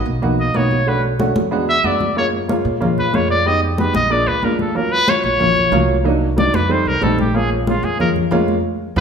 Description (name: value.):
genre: Afro-Cuban jazz.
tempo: 185 BPM.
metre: 4/4.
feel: straight.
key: unclear.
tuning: A4 = 440 Hz.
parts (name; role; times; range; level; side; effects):
dark baby grand piano; accompaniment; 0.0-9.0 s; Gb3 to G4; -20 LUFS; right 2 dB; none.
upright bass; bass; 0.1-9.0 s; Bb1 to Bb2; -22 LUFS; equal; none.
congas; percussion; 0.1-9.0 s; none; -22 LUFS; left 2 dB; none.
clear trumpet; melody; 0.4-9.0 s; Db4 to E5; -19 LUFS; equal; none.
room: wet large studio reverb, RT60 1.5 s.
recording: band playing live in one room.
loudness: -14 LUFS.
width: side -6 dB against mid.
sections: 0.0-9.0 A section.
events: trumpet solo 0.0-9.0; band accent 8.6-9.0.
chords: 0.0 Abm7 (rootless); 0.9 Bm7; 1.5 E9; 2.2 Gbmaj9; 3.5 Fm7b5; 4.1 Bb7; 4.8 Ebm7; 6.1 Cm7b5; 6.7 F7; 7.3 Bbm7.